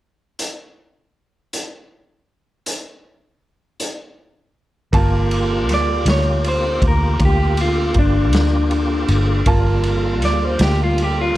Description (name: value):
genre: slow blues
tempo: 53 BPM (dotted quarters)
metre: 12/8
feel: straight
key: G minor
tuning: A4 = 440 Hz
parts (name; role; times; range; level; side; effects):
- raw garage drum kit; drums; 0.4-11.1 s; hi-hat, kick drum, ride cymbal, snare drum; -22 LUFS; equal; none
- bright concert grand piano; accompaniment; 4.9-11.4 s; Bb3 to A5; -25 LUFS; right 4 dB; none
- tonewheel organ; sustained chords; 4.9-11.4 s; G3 to G4; -25 LUFS; equal; slow rotary speaker, overdrive, chorus vibrato
- vintage muted fingered electric bass; bass; 4.9-11.3 s; G1 to D2; -18 LUFS; equal; none
- electric guitar through a small old amp; melody; 5.7-11.4 s; D4 to D5; -20 LUFS; left 1 dB; none
room: little or no reverb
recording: dark, warm production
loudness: -15 LUFS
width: side -15 dB against mid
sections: 0.4-4.9 A section; 4.9-11.4 B section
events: clean electric guitar solo 4.9-11.4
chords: 0.4 N.C.; 4.9 Gm7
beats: | 0.39 1.52 2.66 3.79 | 4.93 6.06 7.20 8.33 | 9.46 10.59